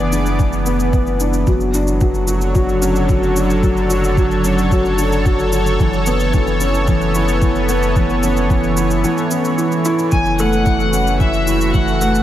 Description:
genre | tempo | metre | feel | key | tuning
piano and strings electronica | 111 BPM | 4/4 | straight | unclear | A4 = 440 Hz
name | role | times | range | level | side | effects
lush unison pad | sustained chords | 0.0-12.2 s | D3 to D5 | -19 LUFS | equal | chorus, sidechain pumping
felt-muted upright piano | riff | 0.0-12.2 s | E3 to F#4 | -19 LUFS | left 1 dB | diffuse ambient delay
warm sub bass | bass | 0.0-12.2 s | F#1 | -20 LUFS | equal | sidechain pumping
shaker | drums | 0.1-12.2 s | none | -29 LUFS | equal | overdrive, small room ambience
electronic kick drum | drums | 0.4-11.9 s | none | -17 LUFS | equal | overdrive, small room ambience
warm chamber violin section | melody | 10.1-12.2 s | E5 to G#5 | -19 LUFS | left 1 dB | diffuse ambient delay
room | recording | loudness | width
wet cathedral reverb, RT60 5.5 s | dreamy mix soaked in reverb | -13 LUFS | side -12 dB against mid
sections
0.0-12.2 A section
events
none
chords
0.0 E7/F#; 1.5 Dmaj7/F#; 5.8 Aadd9/F#

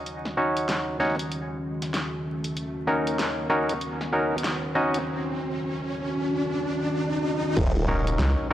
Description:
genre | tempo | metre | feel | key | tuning
glitch hop | 96 BPM | 4/4 | swing 61% on 16ths | Eb minor | A4 = 438 Hz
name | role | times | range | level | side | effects
dark analog pad | sustained chords | 0.0-7.5 s | Eb3 to Gb4 | -31 LUFS | equal | chorus, sidechain pumping
riser and impact | sound effects | 0.0-8.5 s | none | -32 LUFS | equal | none
pop drum kit | drums | 0.1-8.3 s | crash cymbal, hi-hat, snare drum | -32 LUFS | equal | high-pass filter on hats, studio reverb, high-pass filter on snare, high-pass filter on cymbals
overdriven clav | stabs | 0.4-8.5 s | Db4 to Eb5 | -26 LUFS | equal | sidechain pumping, low-pass filter, analog delay
formant-sweep wobble bass | bass | 7.6-7.9 s | Eb1 | -24 LUFS | equal | chorus, tube saturation
electronic kick drum | drums | 7.6-7.7 s | none | -25 LUFS | equal | studio reverb
rubbery square bass | bass | 7.9-8.4 s | Eb1 to Db2 | -23 LUFS | equal | none
room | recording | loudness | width
moderate lush hall reverb, RT60 2.4 s | dry, gritty hardware recording, vinyl crackle | -24 LUFS | side -12 dB against mid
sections
0.0-7.6 A section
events
build-up 0.0-7.6; riser 0.0-7.6; impact 7.6-8.5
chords
0.0 Ebm7

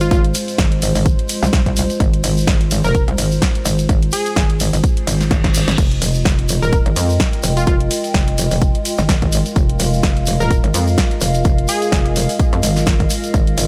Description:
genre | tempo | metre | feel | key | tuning
bass house | 127 BPM | 4/4 | swing 56% on 16ths | F minor | A4 = 440 Hz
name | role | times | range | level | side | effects
plucky unison lead | melody | 0.0-12.1 s | F4 to Bb4 | -27 LUFS | equal | tape echo
dark analog pad | sustained chords | 0.0-13.7 s | Ab3 to F5 | -28 LUFS | equal | lush chorus, sidechain pumping
metallic wobble bass | bass | 0.0-13.7 s | Eb1 to F2 | -20 LUFS | equal | chorus, tube saturation, sidechain pumping
house drum kit | drums | 0.0-13.7 s | crash cymbal, hi-hat, ride cymbal, snare drum | -25 LUFS | equal | none
tube shaker | percussion | 0.0-13.7 s | none | -30 LUFS | equal | none
electronic kick drum | drums | 0.1-13.4 s | none | -18 LUFS | equal | none
reverse cymbal | sound effects | 5.1-5.8 s | none | -30 LUFS | equal | none
warbly tape-like pad | texture | 6.4-13.7 s | F4 to G5 | -29 LUFS | equal | chorus, built-in reverb, sidechain pumping
room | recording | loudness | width
digital ambience | none | -16 LUFS | mono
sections
0.0-13.7 A section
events
reverse cymbal 5.1-5.8; drum fill 5.3-5.8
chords
0.0 Ab6; 5.8 Fm7

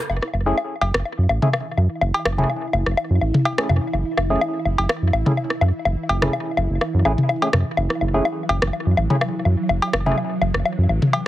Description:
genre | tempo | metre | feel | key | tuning
minimal techno | 125 BPM | 4/4 | swing 54% on 16ths | F# minor | A4 = 435 Hz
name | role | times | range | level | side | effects
round analog bass | bass | 0.1-11.0 s | F#1 to F#2 | -20 LUFS | equal | none
booming analog drum machine | percussion | 0.1-11.2 s | cowbell, rim click, toms, woodblock | -21 LUFS | left 2 dB | tape echo
swarming drone | texture | 1.2-11.3 s | E3 to E4 | -28 LUFS | right 1 dB | built-in reverb
percussive organ stab | stabs | 0.5-10.2 s | A3 to G#4 | -25 LUFS | equal | chorus, cassette tape, tape echo
room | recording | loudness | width
light reverb | heavily compressed radio sound, multiband compression | -18 LUFS | side -14 dB against mid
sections
0.1-11.3 A section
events
none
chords
0.1 F#m7

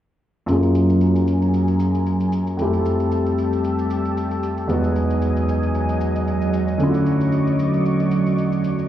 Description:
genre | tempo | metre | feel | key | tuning
amapiano | 114 BPM | 4/4 | swing 55% on 16ths | unclear | A4 = 440 Hz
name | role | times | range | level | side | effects
warm concert grand piano | accompaniment | 0.5-8.9 s | E2 to G#4 | -19 LUFS | equal | low-pass filter
string machine, cellos | sustained chords | 0.5-8.9 s | F#3 to E6 | -22 LUFS | right 1 dB | ensemble chorus, low-pass filter
shaker | drums | 0.5-8.9 s | none | -51 LUFS | left 2 dB | none
room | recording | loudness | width
moderate lush hall reverb, RT60 2.0 s | heard muffled through a wall, club reverb, EQ | -17 LUFS | side -11 dB against mid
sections
0.5-8.9 A section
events
filter sweep 0.5-8.9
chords
0.5 F#maj9; 2.6 Fmaj9; 4.7 Emaj9; 6.8 Dmaj9

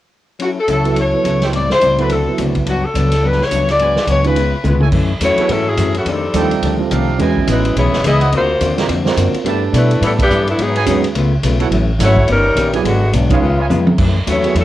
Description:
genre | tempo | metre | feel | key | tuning
jazz, big band swing | 212 BPM | 4/4 | swing 60% on 8ths | unclear | A4 = 440 Hz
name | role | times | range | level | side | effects
bright saxophone section | melody | 0.4-14.6 s | D3 to D#5 | -16 LUFS | left 2 dB | cassette tape
archtop guitar, miked and amplified | accompaniment | 0.4-14.6 s | F2 to A4 | -21 LUFS | left 6 dB | cassette tape
swinging big-band drum kit | drums | 0.4-14.6 s | crash cymbal, hi-hat, kick drum, ride cymbal, snare drum, toms | -21 LUFS | equal | cassette tape
warm trumpet section | stabs | 0.7-13.7 s | Eb4 to A#5 | -26 LUFS | right 7 dB | cassette tape
upright bass | bass | 0.7-14.6 s | E1 to B2 | -17 LUFS | equal | none
warm concert grand piano | accompaniment | 0.8-14.5 s | D#3 to D5 | -20 LUFS | right 7 dB | cassette tape
room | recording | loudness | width
light reverb, small room ambience | home recording on cassette | -12 LUFS | side -14 dB against mid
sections
0.4-4.9 A section; 4.9-14.0 B section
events
drum fill 4.6, 13.7; band accent 10.2, 13.3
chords
0.4 F#m7; 1.5 Am7; 2.1 D7; 2.7 Gmaj7; 3.8 G#m7b5; 4.4 C#7; 4.9 F#m7; 6.1 F13; 7.2 Emaj7; 8.3 D7alt; 9.5 G69; 10.6 G#m7; 11.2 C#7alt; 11.7 F#m7; 12.3 D#7b13; 12.8 G#m7b5; 13.4 C#7; 14.0 F#m7

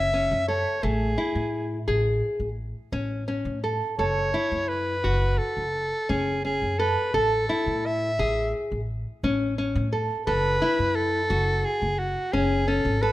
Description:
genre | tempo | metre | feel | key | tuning
contemporary instrumental, chamber music in an uneven meter | 172 BPM (eighths) | 9/8 | straight | A major | A4 = 439 Hz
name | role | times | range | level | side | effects
warm soprano saxophone | melody | 0.0-13.1 s | F#4 to E5 | -26 LUFS | equal | none
nylon-string guitar | arpeggios | 0.0-13.1 s | A3 to A4 | -27 LUFS | left 1 dB | none
upright bass | bass | 0.0-13.1 s | F#1 to A2 | -28 LUFS | equal | none
room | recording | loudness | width
light reverb | close, detailed microphones | -23 LUFS | side -15 dB against mid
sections
0.0-13.1 A section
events
none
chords
0.0 F#m7; 0.8 Amaj7; 4.0 F#m7; 7.1 Amaj7; 10.3 F#m7

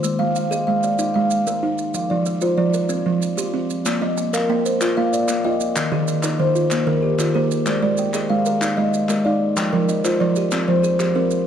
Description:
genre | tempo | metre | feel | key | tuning
southern african traditional, mbira-style interlocking cycle | 126 BPM (dotted quarters) | 12/8 | straight | Bb mixolydian | A4 = 439 Hz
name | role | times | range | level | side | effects
buzzing kalimba | arpeggios | 0.0-11.5 s | Eb3 to Ab5 | -21 LUFS | right 5 dB | none
kalimba | arpeggios | 0.0-11.5 s | Eb3 to G5 | -20 LUFS | left 3 dB | slapback echo
maracas | percussion | 0.0-11.5 s | none | -32 LUFS | right 8 dB | none
group handclap | percussion | 3.9-11.1 s | none | -29 LUFS | left 2 dB | none
room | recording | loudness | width
moderate recital hall reverb, RT60 1.6 s | dark, warm production | -17 LUFS | side -9 dB against mid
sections
0.0-3.9 A section; 3.9-11.5 B section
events
none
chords
0.0 Ab5; 1.9 F5; 3.9 Bb; 5.8 Eb; 7.7 Ab5; 9.6 Fm

